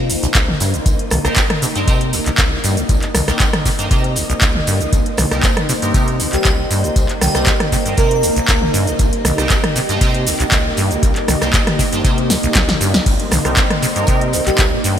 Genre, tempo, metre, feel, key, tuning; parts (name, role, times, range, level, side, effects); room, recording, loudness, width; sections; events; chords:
acid house; 118 BPM; 4/4; straight; C phrygian; A4 = 435 Hz
string machine, full ensemble; sustained chords; 0.0-15.0 s; Bb3 to Eb5; -23 LUFS; equal; phaser, ensemble chorus, vintage 12-bit sampler grit, sidechain pumping
deep acid bass; riff; 0.0-15.0 s; C2 to C3; -20 LUFS; equal; tube saturation, lush chorus, sidechain pumping, ping-pong delay
warbly tape-like pad; texture; 0.0-15.0 s; Eb5; -28 LUFS; right 2 dB; chorus, built-in reverb, sidechain pumping
electro analog drum machine; drums; 0.1-15.0 s; crash cymbal, handclaps, hi-hat, rim click, shaker, snare drum, toms; -18 LUFS; equal; overdrive
soft brush drum kit; drums; 0.1-15.0 s; hi-hat, snare drum, tambourine; -28 LUFS; right 2 dB
electronic kick drum; drums; 0.3-14.7 s; -17 LUFS; equal; overdrive
band-passed chord stab; stabs; 1.2-14.2 s; C4 to Bb4; -26 LUFS; right 2 dB; phaser, ensemble chorus, ping-pong delay
airy dreamy lead; melody; 6.3-8.7, 14.5-14.6 s; G4 to Bb4; -22 LUFS; equal; chorus, ping-pong delay
moderate lush hall reverb, RT60 2.2 s; bright 1980s-style digital production; -13 LUFS; side -9 dB against mid
0.0-15.0 A section
drum fill 12.3-13.1
0.0 Cm7